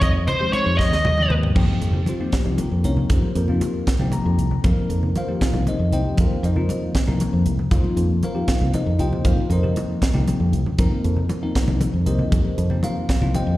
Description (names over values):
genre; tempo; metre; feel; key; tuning
electric jazz fusion; 78 BPM (dotted quarters); 6/8; straight; unclear; A4 = 440 Hz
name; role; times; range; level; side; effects
biting lead guitar; melody; 0.0-1.3 s; C5 to Eb5; -22 LUFS; equal; overdrive, slapback echo
breathy bright jazz flute; second line; 0.0-1.3 s; C6 to Eb6; -29 LUFS; right 1 dB; slapback echo
bell-like tine electric piano; accompaniment; 0.0-13.6 s; F3 to Bb5; -25 LUFS; left 2 dB; phaser, slapback echo
fingered electric bass; bass; 0.0-13.6 s; C2 to F2; -21 LUFS; equal; none
crisp fusion drum kit; drums; 0.0-13.5 s; crash cymbal, hi-hat, kick drum, snare drum, toms; -22 LUFS; equal; none
congas; percussion; 0.0-13.5 s; none; -27 LUFS; right 1 dB; slapback echo
room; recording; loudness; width
small room ambience; live gig heard through the venue's PA, recital hall reverb; -18 LUFS; side -16 dB against mid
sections
0.0-1.6 A section; 1.6-13.6 B section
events
drum fill 0.8-1.6; tine electric piano fill 3.9-4.6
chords
0.0 Fm7; 1.6 F9sus4